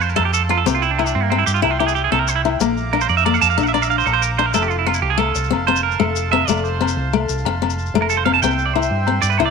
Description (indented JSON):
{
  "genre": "highlife guitar band",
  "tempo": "124 BPM (dotted quarters)",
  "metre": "12/8",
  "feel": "straight",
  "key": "F major",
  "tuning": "A4 = 440 Hz",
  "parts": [
    { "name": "picked steel-string acoustic guitar", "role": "accompaniment", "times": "0.0-9.5 s", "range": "A3 to E4", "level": "-21 LUFS", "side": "left 11 dB", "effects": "none" },
    { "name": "accordion", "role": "sustained chords", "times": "0.0-9.5 s", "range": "E5 to D6", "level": "-28 LUFS", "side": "right 2 dB", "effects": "none" },
    { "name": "clean electric guitar", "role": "arpeggios", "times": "0.0-9.5 s", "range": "Bb3 to A5", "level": "-18 LUFS", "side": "right 12 dB", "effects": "spring reverb, slapback echo" },
    { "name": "hollow-body short-scale fingered electric bass", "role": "bass", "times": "0.0-9.5 s", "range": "F1 to G2", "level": "-22 LUFS", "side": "right 1 dB", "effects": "none" },
    { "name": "maracas", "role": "percussion", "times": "0.0-9.4 s", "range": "none", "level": "-29 LUFS", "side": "left 14 dB", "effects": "none" },
    { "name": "agogo bells", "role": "percussion", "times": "0.2-9.5 s", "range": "none", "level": "-28 LUFS", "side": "left 15 dB", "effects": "none" }
  ],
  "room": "light reverb, small room ambience",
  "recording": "1960s-style stereo with parts hard left and right",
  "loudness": "-15 LUFS",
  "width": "side -5 dB against mid",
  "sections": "0.0-9.5 A section",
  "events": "clean electric guitar solo 0.0-9.5",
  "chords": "0.0 F; 0.7 C; 2.6 Bb; 4.5 F; 8.4 C"
}